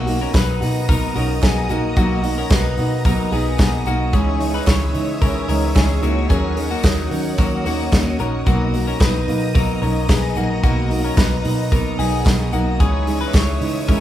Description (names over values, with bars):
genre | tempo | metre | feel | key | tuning
jangly indie pop | 111 BPM | 4/4 | straight | B major | A4 = 441 Hz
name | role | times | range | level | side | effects
picked steel-string acoustic guitar | accompaniment | 0.0-14.0 s | B2 to A#4 | -23 LUFS | right 3 dB | none
string machine, violins | sustained chords | 0.0-14.0 s | C#5 to D#6 | -30 LUFS | right 1 dB | ensemble chorus
twelve-string electric guitar | arpeggios | 0.0-14.0 s | F#3 to C#5 | -24 LUFS | left 5 dB | spring reverb
vintage muted picked electric bass | bass | 0.0-13.9 s | A#1 to D#3 | -22 LUFS | equal | none
modern studio drum kit | drums | 0.1-14.0 s | hi-hat, kick drum, snare drum | -19 LUFS | equal | none
group handclap | percussion | 0.3-13.5 s | none | -38 LUFS | right 6 dB | none
room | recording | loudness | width
moderate recital hall reverb, RT60 1.4 s | recorded in a church or concert hall | -16 LUFS | side -12 dB against mid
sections
0.0-14.0 A section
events
none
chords
0.0 Bmaj7; 4.1 C#madd9; 6.3 D#m7; 8.5 Bmaj7; 12.8 C#madd9